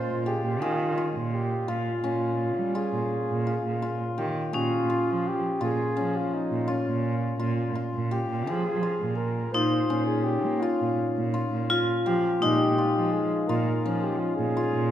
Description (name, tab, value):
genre	contemporary instrumental, chamber music in an uneven meter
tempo	168 BPM (eighths)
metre	11/8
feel	straight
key	unclear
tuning	A4 = 440 Hz
part	mellow flugelhorn	melody	0.0-14.9 s	Db4 to C5	-30 LUFS	right 1 dB	none
part	hammered dulcimer	arpeggios	0.0-14.9 s	Ab3 to Ab4	-30 LUFS	left 4 dB	none
part	warm cello	bass	0.1-14.9 s	Bb2 to Bb3	-29 LUFS	right 3 dB	none
part	vibraphone with hard mallets	second line	4.5-14.9 s	Db4 to F4	-28 LUFS	left 2 dB	none
room	moderate recital hall reverb, RT60 1.8 s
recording	none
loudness	-24 LUFS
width	side -11 dB against mid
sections	0.0-14.9 A section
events	none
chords	0.0 Bbm7; 4.5 Db6/Bb